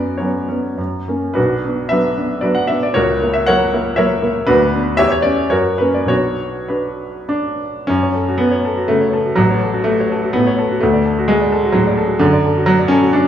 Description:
classical, romantic character piece for solo piano; 96-130 BPM; 3/4; rubato; B minor, F# minor from 7.9 s; A4 = 441 Hz
clear baby grand piano; solo; 0.0-13.3 s; A1 to F#5; -14 LUFS; equal
wet recital hall reverb, RT60 1.5 s; studio reverb; -14 LUFS; side -10 dB against mid
0.0-7.9 A section; 7.9-13.3 B section
0.0 F#sus4; 0.8 F#; 1.4 Bm; 3.0 F#7/C#; 4.5 Bm/D; 5.0 C#dim/E; 5.5 F#; 6.1 Bm; 7.9 F#m; 9.4 F#m/A; 10.8 D; 12.2 D/F#

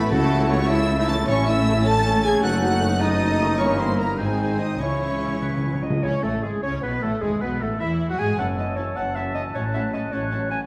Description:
classical; 103 BPM (dotted quarters); 6/8; rubato; C# minor; A4 = 440 Hz
clear symphonic violin section; melody; 0.0-10.6 s; G#4 to A6; -35 LUFS; equal
clear clarinet; second line; 0.0-10.6 s; C#4 to G#5; -34 LUFS; equal
clear oboe; second line; 0.0-10.7 s; G#4 to A5; -36 LUFS; equal
mellow hollow large flute ensemble; second line; 0.0-10.7 s; G#4 to F#6; -34 LUFS; equal
warm symphonic violin section; second line; 0.0-10.6 s; G#3 to A5; -36 LUFS; equal
clear symphonic viola section; accompaniment; 0.0-10.6 s; G#3 to G#4; -33 LUFS; equal
warm bassoon; accompaniment; 0.0-10.7 s; G#3 to G#4; -33 LUFS; equal
mellow French horn section; sustained chords; 0.0-10.7 s; E3 to A4; -31 LUFS; equal
dark tuba; bass; 0.0-5.8 s; F#1 to C#2; -30 LUFS; equal
rich symphonic cello section; bass; 0.0-10.6 s; F#2 to G#3; -31 LUFS; equal
rich symphonic double bass section; bass; 0.0-10.6 s; F#1 to G#2; -32 LUFS; equal
timpani; percussion; 0.1-0.7, 4.8-7.8 s; E2 to C#3; -32 LUFS; equal
clear trombone section; sustained chords; 0.5-5.8 s; C#3 to C#4; -35 LUFS; equal
wet recital hall reverb, RT60 1.6 s; -22 LUFS; mono
0.0-6.0 A section; 6.0-10.7 B section
timpani fill 4.8-6.0
0.1 A/C#; 1.3 A; 2.4 D#dim/F#; 3.6 D#13b9/G; 4.2 G#; 4.8 C#m; 6.0 C#5; 7.2 F#m11/G#; 8.4 F#m7; 9.5 F#m/A

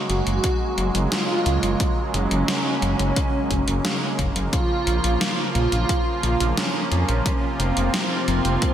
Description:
synthwave; 88 BPM; 4/4; straight; Bb minor; A4 = 440 Hz
brassy analog pad; sustained chords; 0.0-8.7 s; C3 to F4; -26 LUFS; right 2 dB; chorus, sidechain pumping
mellow synth brass; melody; 0.1-8.7 s; C4 to Gb4; -28 LUFS; equal; chorus, diffuse ambient delay
airy dreamy lead; second line; 0.1-8.7 s; C4 to Gb4; -31 LUFS; right 1 dB; chorus, tape echo
dark detuned saw bass; bass; 0.1-8.6 s; F1 to F2; -23 LUFS; equal; tube saturation, sidechain pumping
gated 80s digital drum machine; drums; 0.1-8.7 s; hi-hat, snare drum; -27 LUFS; left 1 dB; gated reverb, gated reverb snare, overdrive
electronic kick drum; drums; 0.4-8.7 s; -24 LUFS; equal
moderate lush hall reverb, RT60 2.6 s; dreamy mix soaked in reverb; -19 LUFS; side -10 dB against mid
0.0-8.7 A section
0.0 Gbadd9; 4.5 Bbm; 7.3 Fsus4

